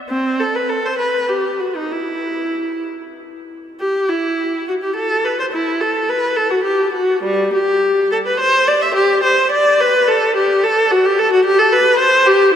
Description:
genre	classical, baroque-style suite movement for unaccompanied viola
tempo	62-75 BPM (dotted quarters)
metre	6/8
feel	rubato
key	E minor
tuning	A4 = 440 Hz
part	clear viola	solo	0.1-12.5 s	G3 to E5	-14 LUFS	equal	none
room	wet cathedral reverb, RT60 5.2 s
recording	none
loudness	-14 LUFS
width	side -9 dB against mid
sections	0.0-3.8 A section; 3.8-12.6 B section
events	none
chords	none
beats	| 0.11 1.00 | 1.92 2.85 | 3.79 4.67 | 5.53 6.37 | 7.25 8.12 | 8.96 9.80 | 10.64 11.46 | 12.27

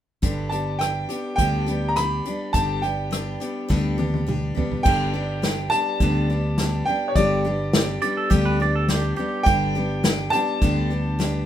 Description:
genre	honky-tonk and classic country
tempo	104 BPM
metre	4/4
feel	straight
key	G major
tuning	A4 = 441 Hz
part	picked steel-string acoustic guitar	accompaniment	0.2-11.5 s	G2 to G4	-26 LUFS	left 2 dB	none
part	fingered electric bass	bass	0.2-11.4 s	G1 to D2	-26 LUFS	equal	none
part	unplugged drum kit	drums	0.2-11.3 s	crash cymbal, hi-hat, kick drum, rim click, snare drum, toms	-23 LUFS	equal	none
part	bright upright piano	melody	0.5-11.5 s	C#5 to B5	-25 LUFS	right 1 dB	none
part	pedal steel guitar	second line	8.0-9.5 s	G4 to D5	-26 LUFS	right 4 dB	none
room	wet studio reverb, RT60 0.6 s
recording	minimal, uncompressed stereo recording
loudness	-20 LUFS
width	side -11 dB against mid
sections	0.2-4.8 A section; 4.8-11.5 B section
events	drum fill 3.7-4.8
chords	0.2 G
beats	| 0.23 0.81 1.38 1.96 | 2.54 3.12 3.70 4.27 | 4.85 5.43 6.00 6.58 | 7.16 7.73 8.31 8.89 | 9.46 10.04 10.62 11.19

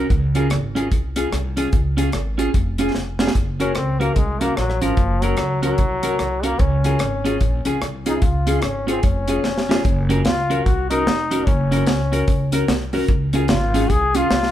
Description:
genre	ska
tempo	148 BPM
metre	4/4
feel	swing 61% on 8ths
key	unclear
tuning	A4 = 440 Hz
part	clean electric guitar	accompaniment	0.0-14.3 s	Db4 to Bb4	-24 LUFS	right 2 dB	tape echo
part	dark upright piano	stabs	0.0-14.3 s	Db4 to Bb4	-28 LUFS	left 4 dB	tape echo
part	upright bass	bass	0.0-14.5 s	F1 to Db2	-22 LUFS	equal	none
part	deep reggae drum kit	drums	0.1-14.5 s	hi-hat, kick drum, rim click, snare drum	-21 LUFS	equal	none
part	clear trombone	melody	3.6-14.5 s	F3 to Ab4	-23 LUFS	left 3 dB	none
room	light reverb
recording	band playing live in one room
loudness	-17 LUFS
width	side -12 dB against mid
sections	0.0-3.4 A section; 3.4-14.5 B section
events	drum fill 2.9-3.4, 9.4-9.8; trombone solo 3.4-14.5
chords	0.1 Db; 3.4 Gb; 6.6 Db; 9.8 Gb; 13.1 Db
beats	| 0.10 0.51 0.92 1.32 | 1.73 2.13 2.54 2.95 | 3.35 3.76 4.17 4.57 | 4.98 5.38 5.79 6.20 | 6.60 7.01 7.41 7.82 | 8.22 8.63 9.04 9.44 | 9.85 10.25 10.66 11.06 | 11.47 11.88 12.28 12.69 | 13.09 13.49 13.90 14.30

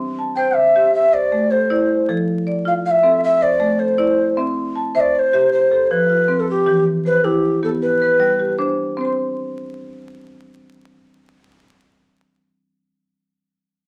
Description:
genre	southern african traditional, mbira-style interlocking cycle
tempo	105 BPM (dotted quarters)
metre	12/8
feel	straight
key	C major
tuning	A4 = 440 Hz
part	marimba with medium hard mallets	arpeggios	0.0-12.8 s	E3 to C6	-23 LUFS	equal	none
part	mellow hollow Native American-style cedar flute	melody	0.4-8.5 s	G4 to G5	-18 LUFS	equal	none
room	wet studio reverb, RT60 0.6 s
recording	vinyl crackle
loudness	-17 LUFS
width	mono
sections	0.0-9.0 A section; 9.0-11.3 B section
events	none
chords	0.0 C; 0.9 Am; 2.1 F; 3.2 Am; 4.4 C; 5.5 F; 6.7 Em; 7.8 G; 9.0 N.C.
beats	0.36 0.94 1.51 | 2.08 2.65 3.23 3.80 | 4.37 4.94 5.52 6.09 | 6.66 7.24 7.81 8.38 | 8.96 9.53 10.11 10.68

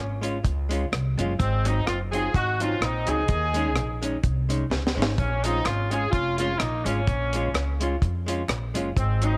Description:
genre	ska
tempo	127 BPM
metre	4/4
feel	swing 54% on 8ths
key	Bb minor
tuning	A4 = 440 Hz
part	warm horn section	melody	0.0-9.4 s	Ab3 to Ab4	-30 LUFS	equal	none
part	upright bass	bass	0.0-9.4 s	F1 to F2	-29 LUFS	equal	none
part	archtop guitar, miked and amplified	accompaniment	0.2-9.4 s	Gb3 to F4	-33 LUFS	equal	none
part	deep reggae drum kit	drums	0.2-9.3 s	hi-hat, kick drum, rim click, snare drum	-29 LUFS	equal	none
part	group handclap	percussion	5.7-8.6 s	none	-44 LUFS	equal	none
room	light reverb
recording	none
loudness	-25 LUFS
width	mono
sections	0.0-9.4 A section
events	drum fill 4.7-5.2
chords	0.0 Bbm7 (rootless); 1.4 Ab7; 3.3 Eb7sus4; 5.2 Bbm7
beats	0.45 0.92 | 1.40 1.87 2.34 2.82 | 3.29 3.76 4.24 4.71 | 5.18 5.66 6.13 6.60 | 7.07 7.55 8.02 8.49 | 8.97

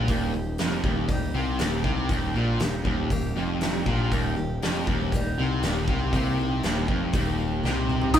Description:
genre	classic rock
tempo	119 BPM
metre	4/4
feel	straight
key	Eb major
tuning	A4 = 438 Hz
part	picked acoustic archtop guitar	accompaniment	0.0-8.2 s	Eb3 to G4	-33 LUFS	left 2 dB	none
part	distorted electric guitar	riff	0.0-8.2 s	Eb2 to Eb3	-30 LUFS	right 5 dB	distortion
part	overdriven electric guitar	riff	0.0-8.2 s	Eb2 to Eb3	-30 LUFS	left 5 dB	none
part	growling picked electric bass	bass	0.0-8.2 s	Eb1 to C2	-29 LUFS	equal	overdrive
part	big rock drum kit	drums	0.1-8.2 s	crash cymbal, hi-hat, kick drum, snare drum, toms	-28 LUFS	equal	none
part	overdriven tonewheel organ	melody	8.1-8.2 s	Eb4	-17 LUFS	equal	chorus vibrato, slow rotary speaker
part	octave-fuzz lead guitar	second line	8.1-8.2 s	Eb3	-24 LUFS	right 4 dB	distortion
room	moderate small room reverb, RT60 0.5 s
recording	band playing live in one room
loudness	-23 LUFS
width	side -10 dB against mid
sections	0.0-8.1 A section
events	drum fill 7.6-8.1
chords	0.0 Eb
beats	| 0.10 0.60 1.10 1.61 | 2.11 2.61 3.12 3.62 | 4.12 4.63 5.13 5.63 | 6.13 6.64 7.14 7.64 | 8.14

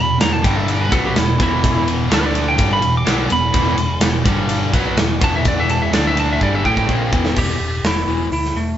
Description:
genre	hard rock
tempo	126 BPM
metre	4/4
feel	straight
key	E minor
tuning	A4 = 441 Hz
part	lightly driven lead guitar	melody	0.0-8.8 s	A3 to D6	-21 LUFS	right 1 dB	none
part	distorted electric guitar	riff	0.0-7.4 s	E2 to D4	-25 LUFS	equal	overdrive
part	overdriven semi-hollow guitar	riff	0.0-8.3 s	E2 to D4	-25 LUFS	left 5 dB	none
part	sludgy distorted guitar	riff	0.0-7.4 s	E2 to D4	-24 LUFS	right 6 dB	overdrive
part	overdriven picked electric bass	bass	0.0-8.7 s	E1 to D2	-22 LUFS	equal	none
part	big rock drum kit	drums	0.2-8.5 s	crash cymbal, hi-hat, kick drum, ride cymbal, snare drum	-18 LUFS	equal	none
room	moderate studio ambience, RT60 0.4 s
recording	band playing live in one room, nothing above 7.8 kHz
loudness	-14 LUFS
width	side -11 dB against mid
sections	0.0-7.4 A section; 7.4-8.8 B section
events	lead electric guitar solo 0.0-7.4; drum fill 6.4-7.4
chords	0.4 G5; 0.9 E5; 2.1 D5; 2.6 Em; 4.3 G5; 4.7 E5; 5.9 D5; 6.4 Em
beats	0.20 0.67 1.15 | 1.63 2.10 2.58 3.06 | 3.54 4.01 4.49 4.97 | 5.45 5.93 6.41 6.88 | 7.36 7.84 8.32

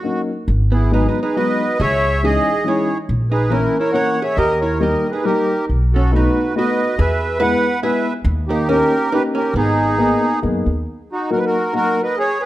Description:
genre	musette waltz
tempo	139 BPM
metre	3/4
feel	rubato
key	G# minor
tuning	A4 = 438 Hz
part	accordion	melody	0.0-12.5 s	D#4 to F#5	-18 LUFS	right 1 dB	light tremolo tuning
part	archtop guitar, miked and amplified	second line	0.0-10.4 s	Bb3 to B4	-23 LUFS	right 3 dB	none
part	dark upright piano	accompaniment	0.0-12.0 s	E3 to G#4	-22 LUFS	left 3 dB	none
part	upright bass	bass	0.5-10.8 s	G#1 to F#2	-18 LUFS	equal	none
room	moderate recital hall reverb, RT60 1.4 s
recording	dark, warm production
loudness	-15 LUFS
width	side -15 dB against mid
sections	0.5-10.9 A section; 10.9-12.5 B section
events	none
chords	0.5 G#m7; 1.8 C#madd9; 3.1 A#dim; 4.4 D#; 5.7 B7; 7.0 E; 8.3 D#7; 9.5 G#madd9; 10.9 Ebm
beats	0.04 | 0.49 0.94 1.37 | 1.81 2.24 2.67 | 3.10 3.52 3.95 | 4.38 4.81 5.25 | 5.69 6.13 6.56 | 6.98 7.40 7.82 | 8.25 8.68 9.11 | 9.55 9.98 10.42 | 10.87 11.31 11.74 | 12.17

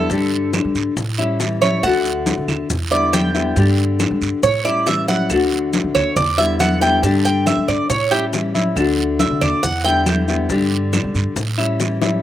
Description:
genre	latin, Cuban son and guajira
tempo	138 BPM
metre	4/4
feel	straight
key	D major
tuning	A4 = 440 Hz
part	nylon-string guitar	accompaniment	0.0-12.2 s	D3 to G4	-19 LUFS	left 3 dB	none
part	Cuban tres	arpeggios	0.0-10.5 s	G4 to A5	-19 LUFS	right 3 dB	slapback echo
part	upright bass	bass	0.0-12.2 s	D2 to G3	-23 LUFS	right 1 dB	none
part	bongos	percussion	0.1-12.1 s	none	-28 LUFS	left 6 dB	none
part	congas	percussion	0.1-12.2 s	none	-24 LUFS	equal	none
part	guiro	percussion	0.1-12.2 s	none	-28 LUFS	right 6 dB	none
part	maracas	percussion	0.1-12.2 s	none	-30 LUFS	left 4 dB	none
part	claves	percussion	0.5-11.8 s	none	-31 LUFS	right 7 dB	none
room	little or no reverb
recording	recorded outdoors, with no room sound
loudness	-15 LUFS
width	side -12 dB against mid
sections	0.0-12.2 A section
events	Cuban tres solo 0.0-12.2; drum fill 12.0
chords	0.1 Gsus2; 1.0 A7; 1.8 D; 2.7 Em7; 3.6 G5; 4.4 A7; 5.3 D; 6.2 Em7; 7.0 G5; 7.9 A7; 8.8 D; 9.6 Em7; 10.5 G5; 11.4 A7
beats	| 0.10 0.54 0.97 1.40 | 1.83 2.27 2.70 3.13 | 3.57 4.00 4.43 4.87 | 5.30 5.73 6.17 6.60 | 7.03 7.47 7.90 8.33 | 8.77 9.20 9.63 10.07 | 10.50 10.93 11.37 11.80

